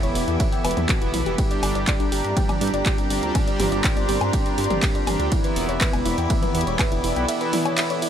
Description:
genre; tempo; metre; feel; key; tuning
melodic techno; 122 BPM; 4/4; straight; unclear; A4 = 440 Hz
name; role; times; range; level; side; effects
evolving wavetable pad; sustained chords; 0.0-8.1 s; G4 to D6; -30 LUFS; left 1 dB; chorus, built-in reverb, sidechain pumping
soft round pluck; arpeggios; 0.0-8.1 s; B3 to Bb5; -29 LUFS; equal; chorus, sidechain pumping, digital delay
brassy analog pad; stabs; 0.0-8.1 s; E3 to G4; -27 LUFS; right 2 dB; chorus, tremolo, sidechain pumping, digital delay
dark detuned saw bass; bass; 0.0-7.3 s; E1 to G2; -27 LUFS; equal; sidechain pumping
punchy analog drum machine; drums; 0.0-8.1 s; handclaps, hi-hat, ride cymbal, toms, woodblock; -27 LUFS; equal; none
granular cloud pad; texture; 0.0-8.1 s; B3 to D5; -30 LUFS; equal; built-in reverb, sidechain pumping
electronic kick drum; drums; 0.4-6.9 s; none; -23 LUFS; equal; none
room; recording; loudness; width
digital ambience; none; -19 LUFS; side -9 dB against mid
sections
0.0-8.1 A section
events
none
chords
0.0 Em7; 1.4 Gm; 5.3 Em7

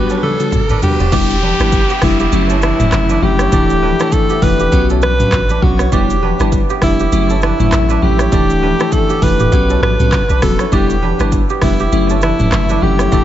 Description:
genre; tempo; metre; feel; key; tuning
afrobeats; 100 BPM; 4/4; swing 58% on 16ths; E dorian; A4 = 440 Hz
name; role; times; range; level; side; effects
breathy alto saxophone; melody; 0.0-13.2 s; E4 to B4; -18 LUFS; equal; dub echo
crystalline FM electric piano; accompaniment; 0.0-13.2 s; E3 to F#4; -18 LUFS; left 2 dB; chorus, dub echo
kora; riff; 0.0-13.2 s; B3 to D5; -22 LUFS; right 7 dB; dub echo
punchy sub bass; bass; 0.0-13.2 s; D1 to B1; -17 LUFS; equal; none
riser and downlifter; sound effects; 0.0-5.9 s; none; -26 LUFS; equal; none
afro-pop drum kit; drums; 0.1-13.2 s; crash cymbal, handclaps, hi-hat, kick drum, rim click, shaker, toms; -17 LUFS; equal; none
congas; percussion; 0.2-13.2 s; none; -25 LUFS; left 2 dB; none
deep dark ambient pad; sustained chords; 1.9-13.2 s; A4 to E5; -26 LUFS; left 1 dB; chorus, built-in reverb, sidechain pumping
room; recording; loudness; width
light reverb, digital ambience; echo-heavy mix, nothing above 7.8 kHz; -11 LUFS; side -12 dB against mid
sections
0.0-1.1 A section; 1.1-13.2 B section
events
drum fill 0.0-1.1; riser 0.0-1.1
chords
0.0 Gmaj7; 1.1 Em7; 2.3 F#m7; 3.5 Dsus2; 4.7 Bsus2; 5.9 Em7; 7.1 F#m7; 8.3 Dsus2; 9.5 Bsus2; 10.7 Em7; 11.9 F#m7

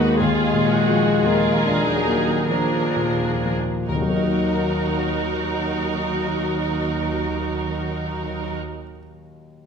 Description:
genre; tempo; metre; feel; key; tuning
classical, romantic movement for piano and orchestra; 41-60 BPM; 3/4; rubato; Eb minor; A4 = 440 Hz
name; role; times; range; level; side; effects
warm grand piano; melody; 0.0-9.7 s; Eb2 to Bb4; -24 LUFS; left 2 dB; none
warm studio violin section; second line; 0.0-8.6 s; F4 to Cb5; -29 LUFS; right 1 dB; none
rich studio viola section; accompaniment; 0.0-8.6 s; D4 to Ab4; -26 LUFS; right 2 dB; none
dark French horn section; sustained chords; 0.0-8.6 s; F3 to Bb3; -25 LUFS; left 2 dB; none
warm studio cello section; bass; 0.0-8.6 s; Eb2; -29 LUFS; right 3 dB; none
room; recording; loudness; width
wet scoring stage reverb, RT60 1.5 s; none; -19 LUFS; side -6 dB against mid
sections
0.0-3.9 A section; 3.9-7.8 B section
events
slowing down 0.0-3.9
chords
0.2 Bb7/Eb; 3.9 Ebm

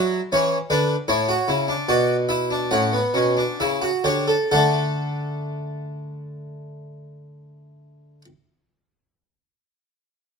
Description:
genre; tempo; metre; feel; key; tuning
classical, baroque-style 3-part fugue for harpsichord; 63-82 BPM; 4/4; straight; D major; A4 = 438 Hz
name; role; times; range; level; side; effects
harpsichord; solo; 0.0-8.2 s; A2 to F#5; -20 LUFS; equal; none
room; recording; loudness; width
moderate stone room reverb, RT60 1.1 s; minimal, uncompressed stereo recording; -19 LUFS; side -5 dB against mid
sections
0.0-4.5 A section; 4.5-8.3 B section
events
slowing down 0.0-4.5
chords
0.0 E7(no3); 1.1 Asus4; 2.7 A7; 4.5 D

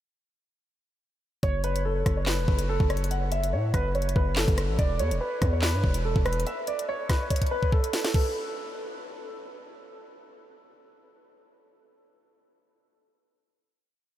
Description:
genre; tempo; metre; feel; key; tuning
hip hop, drill; 143 BPM; 4/4; half-time; F# minor; A4 = 441 Hz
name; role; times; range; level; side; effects
dark concert grand piano; melody; 1.4-9.4 s; A4 to F#5; -30 LUFS; right 1 dB; analog chorus, diffuse ambient delay
distorted 808-style bass; bass; 1.4-6.5 s; E1 to A2; -27 LUFS; equal; distortion
drill drum kit; drums; 1.4-8.2 s; crash cymbal, handclaps, hi-hat, kick drum, rim click, snare drum; -27 LUFS; equal; none
room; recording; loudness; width
moderate huge ambient reverb, RT60 6.7 s; dreamy mix soaked in reverb; -24 LUFS; side -12 dB against mid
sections
1.4-8.1 hook; 8.1-11.5 final note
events
drum fill 7.3-8.1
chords
1.4 F#m; 4.8 E5; 8.1 N.C.

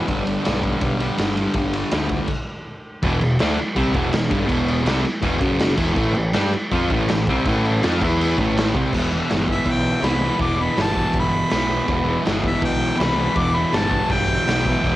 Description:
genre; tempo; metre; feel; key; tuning
garage rock duo or trio; 163 BPM; 4/4; straight; E minor; A4 = 441 Hz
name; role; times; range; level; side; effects
fuzz guitar; riff; 0.0-15.0 s; E2 to G4; -21 LUFS; equal; distortion, cassette tape
growling picked electric bass; bass; 0.1-15.0 s; E1 to G2; -24 LUFS; equal; overdrive
raw garage drum kit; drums; 0.1-14.9 s; crash cymbal, kick drum, ride cymbal, snare drum; -24 LUFS; equal; cassette tape
clear harmonica; melody; 9.5-15.0 s; E5 to D6; -23 LUFS; left 1 dB; overdrive, cassette tape
room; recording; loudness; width
light reverb; home recording on cassette; -18 LUFS; side -15 dB against mid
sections
0.0-3.0 A section; 3.0-8.9 B section; 8.9-15.0 C section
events
stop 2.3-3.0; harmonica solo 8.9-15.0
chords
0.1 G; 3.0 Em; 5.4 F#5; 5.8 E5; 6.0 A5; 8.0 E5; 8.4 A5; 8.9 Em

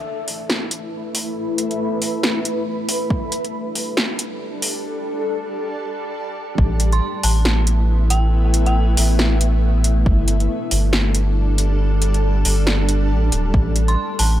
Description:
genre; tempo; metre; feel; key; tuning
deep dubstep; 138 BPM; 4/4; swing 58% on 16ths, half-time; unclear; A4 = 440 Hz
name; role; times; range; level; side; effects
granular cloud pad; sustained chords; 0.0-14.4 s; G3 to B4; -24 LUFS; left 1 dB; built-in reverb
soft dub sub bass; bass; 0.0-14.4 s; D1 to A1; -18 LUFS; equal; high-pass filter
deep house drum kit; drums; 0.3-14.3 s; hi-hat, snare drum; -22 LUFS; equal; overdrive
electronic kick drum; drums; 3.1-3.2, 6.6-6.7, 10.1-10.2, 13.5-13.6 s; none; -19 LUFS; equal; overdrive
dark detuned synth bell; melody; 6.9-9.0, 13.9-14.4 s; G5 to C6; -27 LUFS; right 1 dB; chorus, dub echo
room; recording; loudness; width
little or no reverb; dry, gritty hardware recording, high-pass filter; -17 LUFS; side -13 dB against mid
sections
0.0-6.6 A section; 6.6-14.4 B section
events
build-up 0.0-6.6; filter sweep on ambient pad 0.0-6.6; filter sweep 0.0-6.6; break 4.8-6.6; drop 6.6-14.4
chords
0.0 A5; 3.1 G5; 6.6 A5; 10.1 G5; 13.5 A5

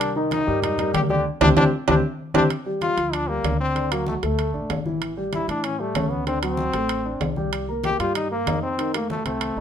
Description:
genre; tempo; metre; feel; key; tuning
latin, salsa; 191 BPM; 4/4; straight; G minor; A4 = 439 Hz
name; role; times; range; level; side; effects
brilliant trombone; melody; 0.0-9.6 s; A3 to G4; -25 LUFS; left 2 dB; none
dark concert grand piano; accompaniment; 0.0-9.6 s; D3 to Eb5; -25 LUFS; equal; none
upright bass; bass; 0.0-9.6 s; A1 to A2; -28 LUFS; right 1 dB; none
congas; percussion; 0.0-9.6 s; none; -28 LUFS; left 4 dB; none
timbales; percussion; 0.0-9.6 s; none; -28 LUFS; right 8 dB; none
room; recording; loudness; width
moderate studio reverb, RT60 0.8 s; minimal, uncompressed stereo recording; -20 LUFS; side -8 dB against mid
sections
0.0-2.5 A section; 2.5-9.6 B section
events
drum fill 1.3-2.5; band accent 1.3-2.5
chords
0.0 Cm7; 1.3 D7sus4; 2.5 Gm7; 3.8 D; 5.0 A7; 6.3 D7; 7.5 Cm7; 8.8 F7

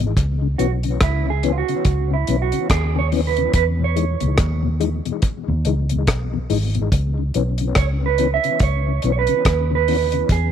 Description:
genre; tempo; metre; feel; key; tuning
roots reggae; 71 BPM; 4/4; swing 59% on 16ths; C# minor; A4 = 440 Hz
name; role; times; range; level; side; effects
mellow tonewheel organ; accompaniment; 0.0-10.2 s; E2 to D#4; -25 LUFS; left 10 dB; chorus vibrato, slow rotary speaker, tape echo
vintage muted fingered electric bass; bass; 0.0-10.5 s; G#1 to E2; -20 LUFS; equal; none
deep reggae drum kit; drums; 0.2-10.5 s; hi-hat, kick drum, rim click; -20 LUFS; equal; none
mellow electric guitar; accompaniment; 0.6-10.5 s; E4 to E5; -22 LUFS; right 14 dB; vibrato effect, tape echo
room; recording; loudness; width
light reverb, small room reverb; 1960s-style stereo with parts hard left and right; -17 LUFS; side -9 dB against mid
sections
0.0-10.5 A section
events
clean electric guitar solo 0.0-10.5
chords
0.2 C#m7; 3.5 Emaj7; 6.9 C#m7

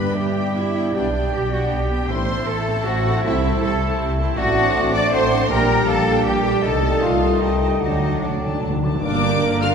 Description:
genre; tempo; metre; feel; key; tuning
classical, dramatic, fast romantic movement for symphony orchestra; 157 BPM; 3/4; rubato; G minor from 4.4 s; A4 = 442 Hz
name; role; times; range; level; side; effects
warm symphonic violin section; melody; 0.0-9.7 s; G5 to F6; -31 LUFS; left 4 dB; none
bright clarinet; second line; 0.0-9.7 s; D4 to D5; -29 LUFS; equal; none
mellow hollow silver concert flute; second line; 0.0-9.7 s; C5 to D6; -29 LUFS; right 1 dB; none
warm cor anglais; second line; 0.0-9.7 s; D4 to G5; -32 LUFS; right 2 dB; none
warm symphonic violin section; second line; 0.0-9.7 s; D5 to D6; -30 LUFS; left 2 dB; none
rich studio viola section; accompaniment; 0.0-9.7 s; F#3 to Bb4; -28 LUFS; right 3 dB; none
warm bassoon; accompaniment; 0.0-9.7 s; F#3 to Bb3; -29 LUFS; right 2 dB; none
rich symphonic double bass section; bass; 0.0-9.7 s; G1 to G2; -23 LUFS; equal; none
warm symphonic cello section; bass; 0.0-9.7 s; G2 to D5; -24 LUFS; right 1 dB; none
mellow trombone section; sustained chords; 0.9-9.7 s; A2 to Bb3; -29 LUFS; right 1 dB; none
warm French horn section; sustained chords; 0.9-9.7 s; A3 to Bb4; -28 LUFS; left 4 dB; none
timpani; percussion; 7.8-9.0 s; D3; -27 LUFS; left 1 dB; none
room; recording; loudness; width
wet concert hall reverb, RT60 2.1 s; heard from further back in the room; -17 LUFS; side -6 dB against mid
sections
0.0-9.0 A section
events
timpani fill 7.8-9.0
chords
0.0 G; 0.9 G/B; 2.1 Am; 3.2 Am/C; 4.4 D7/A; 5.5 Gm/Bb; 6.6 Am7b5/C; 7.8 D; 9.0 Gm

